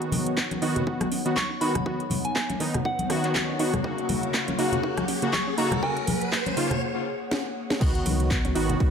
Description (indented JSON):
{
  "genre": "deep house",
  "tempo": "121 BPM",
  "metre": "4/4",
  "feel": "swing 57% on 16ths",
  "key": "unclear",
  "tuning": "A4 = 439 Hz",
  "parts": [
    { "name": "airy breathy pad", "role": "sustained chords", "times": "0.1-8.9 s", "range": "A#3 to F#5", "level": "-34 LUFS", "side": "left 1 dB", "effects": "chorus, sidechain pumping" },
    { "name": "warm analog keys", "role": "stabs", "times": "0.0-8.9 s", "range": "C#3 to F#4", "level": "-28 LUFS", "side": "left 1 dB", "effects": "chorus, sidechain pumping, ping-pong delay" },
    { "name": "house drum kit", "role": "drums", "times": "0.0-8.9 s", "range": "crash cymbal, handclaps, hi-hat, ride cymbal, rim click, snare drum", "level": "-30 LUFS", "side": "equal", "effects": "none" },
    { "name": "riser", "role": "sound effects", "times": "2.0-6.8 s", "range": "none", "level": "-35 LUFS", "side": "equal", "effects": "none" },
    { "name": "congas", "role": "percussion", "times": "0.1-8.8 s", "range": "none", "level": "-30 LUFS", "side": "left 1 dB", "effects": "none" },
    { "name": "soft round pluck", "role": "arpeggios", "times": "0.4-8.9 s", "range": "A#3 to F#4", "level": "-34 LUFS", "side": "right 3 dB", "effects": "chorus, vintage 12-bit sampler grit, sidechain pumping, ping-pong delay" },
    { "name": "electronic kick drum", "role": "drums", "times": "0.4-8.9 s", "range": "none", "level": "-28 LUFS", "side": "equal", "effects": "high-pass filter on kick" },
    { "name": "soft synth bell", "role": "melody", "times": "1.4-6.0 s", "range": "F#5 to C#6", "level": "-32 LUFS", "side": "equal", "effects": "chorus, ping-pong delay" },
    { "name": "sub bass with octave", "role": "bass", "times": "7.8-8.9 s", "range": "G#1 to C#2", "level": "-27 LUFS", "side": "equal", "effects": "sidechain pumping" }
  ],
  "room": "moderate echo chamber reverb, RT60 1.4 s",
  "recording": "none",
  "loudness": "-23 LUFS",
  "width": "side -7 dB against mid",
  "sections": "0.0-7.8 A section; 7.8-8.9 B section",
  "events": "build-up 0.0-7.8; filter sweep on analog synth pad 0.0-7.8; filter sweep on synth arpeggio sound 0.0-7.8; riser 2.0-6.8; break 6.8-7.8; drum fill 7.3-7.8; drop 7.8-8.9",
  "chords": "0.0 C#9sus4; 3.8 G#9sus4; 7.8 C#9sus4"
}